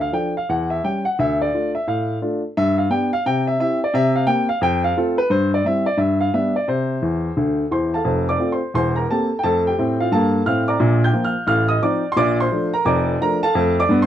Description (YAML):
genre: jazz, stride piano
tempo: 175 BPM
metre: 4/4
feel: swing 63% on 8ths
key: C major, F major from 8.1 s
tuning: A4 = 442 Hz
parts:
  - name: warm upright piano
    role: solo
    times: 0.0-14.1 s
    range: E1 to G6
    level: -17 LUFS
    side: equal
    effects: none
room: moderate studio reverb, RT60 0.5 s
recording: dark, warm production, nothing above 10.4 kHz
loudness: -17 LUFS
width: side -10 dB against mid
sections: 0.0-8.1 A section; 8.1-14.1 B section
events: upright piano fill 7.0-8.1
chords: 0.5 C#dim/E; 1.2 Dm; 2.6 G; 3.2 C; 3.9 C5; 4.6 F; 5.3 C/G; 6.0 G; 6.7 C; 8.1 F; 8.8 C7/E; 9.4 F; 10.8 Bb; 11.5 F7/A; 12.2 Bbmaj7; 13.5 Dm/F